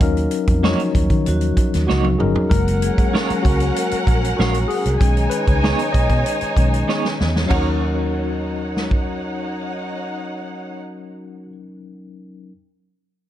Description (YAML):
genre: lush 1970s-style soul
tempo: 96 BPM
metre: 4/4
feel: straight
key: Eb minor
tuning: A4 = 438 Hz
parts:
  - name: tine electric piano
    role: accompaniment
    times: 0.0-12.5 s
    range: D#3 to F5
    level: -23 LUFS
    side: left 3 dB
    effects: medium stereo tremolo
  - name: vintage muted fingered electric bass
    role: bass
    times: 0.0-11.5 s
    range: Gb1 to Eb3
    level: -21 LUFS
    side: equal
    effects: none
  - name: vintage drum kit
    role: drums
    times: 0.0-9.1 s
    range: crash cymbal, hi-hat, kick drum, snare drum, toms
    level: -20 LUFS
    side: equal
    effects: none
  - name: semi-hollow electric guitar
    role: riff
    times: 0.6-11.5 s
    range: Bb3 to Db5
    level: -26 LUFS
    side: right 8 dB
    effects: tremolo
  - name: vibraphone with hard mallets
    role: texture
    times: 1.3-3.7, 7.5-11.5 s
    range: Gb4 to Ab4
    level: -34 LUFS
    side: right 4 dB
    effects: none
  - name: warm studio violin section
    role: second line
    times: 2.5-10.8 s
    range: Db4 to G#5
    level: -25 LUFS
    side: equal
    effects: tape echo
room: studio ambience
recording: dark, warm production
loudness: -16 LUFS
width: side -12 dB against mid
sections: 0.0-2.5 A section; 2.5-7.5 B section; 7.5-10.0 C section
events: drum fill 1.9-2.5, 6.9-7.5; tine electric piano solo 2.5-7.5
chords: 0.0 Ebm7; 2.5 Gbmaj7; 5.0 B69; 7.5 Ebm7